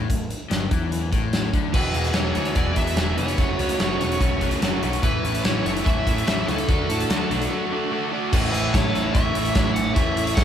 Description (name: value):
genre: classic rock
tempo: 146 BPM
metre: 4/4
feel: straight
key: A major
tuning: A4 = 440 Hz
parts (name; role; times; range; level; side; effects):
- overdriven electric guitar; riff; 0.0-10.4 s; E2 to G#4; -28 LUFS; left 6 dB; none
- growling picked electric bass; bass; 0.0-10.4 s; E1 to A2; -28 LUFS; equal; overdrive
- big rock drum kit; drums; 0.1-10.4 s; crash cymbal, hi-hat, kick drum, snare drum; -23 LUFS; equal; none
- dark smooth lead guitar; melody; 1.7-10.4 s; A4 to F#5; -29 LUFS; left 2 dB; overdrive
- overdriven semi-hollow guitar; riff; 1.7-10.4 s; E2 to F#4; -27 LUFS; right 8 dB; none
- bright tonewheel organ; sustained chords; 8.3-10.4 s; none; barely audible; none; none
- octave-fuzz lead guitar; second line; 8.5-10.4 s; G#4 to D5; -32 LUFS; right 3 dB; distortion
room: light reverb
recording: band playing live in one room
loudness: -20 LUFS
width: side -9 dB against mid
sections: 0.0-1.7 A section; 1.7-8.3 B section; 8.3-10.4 C section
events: break 7.5-8.3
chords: 0.0 A5; 1.7 E; 3.4 F#m; 5.0 A; 6.7 D; 8.3 A